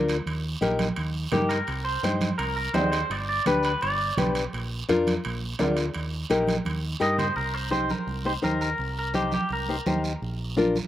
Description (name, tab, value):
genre	latin, cumbia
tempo	169 BPM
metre	4/4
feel	straight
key	C minor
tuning	A4 = 440 Hz
part	nylon-string guitar	accompaniment	0.0-10.8 s	D4 to C5	-26 LUFS	left 3 dB	none
part	deep dub fingered electric bass	bass	0.0-10.8 s	G1 to G2	-30 LUFS	right 1 dB	none
part	guiro	percussion	0.1-10.9 s	none	-39 LUFS	right 5 dB	none
part	timbales	percussion	0.1-7.4 s	none	-35 LUFS	right 4 dB	slapback echo
part	congas	percussion	0.6-10.9 s	none	-31 LUFS	right 3 dB	none
part	clean electric guitar	melody	1.3-4.3, 7.0-10.0 s	G4 to Eb5	-28 LUFS	right 1 dB	spring reverb, slapback echo
room	little or no reverb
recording	recorded outdoors, with no room sound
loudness	-24 LUFS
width	side -12 dB against mid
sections	0.0-7.4 A section; 7.4-10.9 B section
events	drum fill 6.7-7.4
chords	0.3 Eb; 1.7 Cm; 3.1 G; 4.5 Bb; 6.0 Eb; 7.4 Cm7; 10.2 Bb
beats	| 0.27 0.62 0.98 1.33 | 1.69 2.04 2.40 2.75 | 3.11 3.46 3.82 4.17 | 4.53 4.88 5.24 5.60 | 5.95 6.31 6.66 7.02 | 7.37 7.73 8.08 8.44 | 8.79 9.15 9.51 9.86 | 10.22 10.57